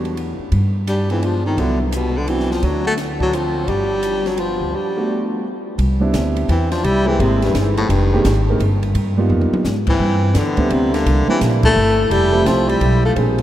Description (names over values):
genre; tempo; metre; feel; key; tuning
jazz, small-group swing and bop; 171 BPM; 3/4; swing 64% on 8ths; G major, C major from 5.8 s; A4 = 440 Hz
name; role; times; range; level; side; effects
warm grand piano; accompaniment; 0.0-2.5, 5.0-13.4 s; F3 to Bb4; -22 LUFS; right 2 dB; none
upright bass; bass; 0.0-13.4 s; F1 to Ab2; -19 LUFS; equal; none
compact cocktail drum kit; drums; 0.1-13.4 s; crash cymbal, hi-hat, kick drum, ride cymbal, snare drum, toms; -26 LUFS; equal; none
breathy baritone saxophone; melody; 0.9-13.1 s; G2 to A3; -20 LUFS; left 2 dB; none
bright trombone; second line; 0.9-13.2 s; Eb3 to F#4; -27 LUFS; right 2 dB; none
room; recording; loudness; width
wet cathedral reverb, RT60 5.5 s; in a vast, echoing space; -15 LUFS; side -12 dB against mid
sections
0.0-5.8 A section; 5.8-13.4 B section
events
break 4.7-5.8; drum fill 9.3-9.7; band accent 11.6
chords
0.0 Em9; 0.5 G7b9; 1.6 Cmaj9#11; 2.6 D7#9; 3.7 Gmaj9; 5.8 Cmaj9; 6.8 C7b13; 7.9 Fm11; 8.9 G7alt; 10.0 Cmaj7; 11.1 C9; 12.1 Fmaj9